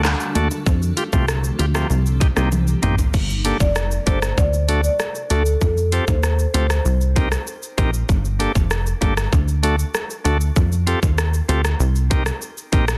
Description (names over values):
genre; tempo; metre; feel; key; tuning
dancehall; 97 BPM; 4/4; straight; G minor; A4 = 439 Hz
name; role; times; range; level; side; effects
granular cloud pad; sustained chords; 0.0-3.1 s; D4 to A4; -34 LUFS; equal; built-in reverb, sidechain pumping
plucky analog bass; bass; 0.0-13.0 s; F1 to F2; -22 LUFS; equal; none
island pop drum kit; drums; 0.0-13.0 s; crash cymbal, handclaps, hi-hat, kick drum, rim click, shaker, toms; -23 LUFS; equal; soft clipping on snare
bongos; percussion; 0.0-3.1 s; none; -35 LUFS; equal; none
bright tonewheel organ; accompaniment; 0.4-12.9 s; A3 to Bb4; -27 LUFS; equal; none
marimba with medium mallets; melody; 3.6-6.7 s; A4 to D5; -27 LUFS; equal; tape echo
room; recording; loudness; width
little or no reverb; dense, heavily limited modern master; -19 LUFS; mono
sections
0.0-3.1 A section; 3.1-13.0 B section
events
drum fill 2.5-3.1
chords
0.0 D; 0.7 Fadd9; 1.9 Cm7; 3.1 Gmadd9; 4.4 D; 5.6 Fadd9; 6.9 Cm7; 8.1 Gmadd9; 9.3 D; 10.6 Fadd9; 11.8 Cm7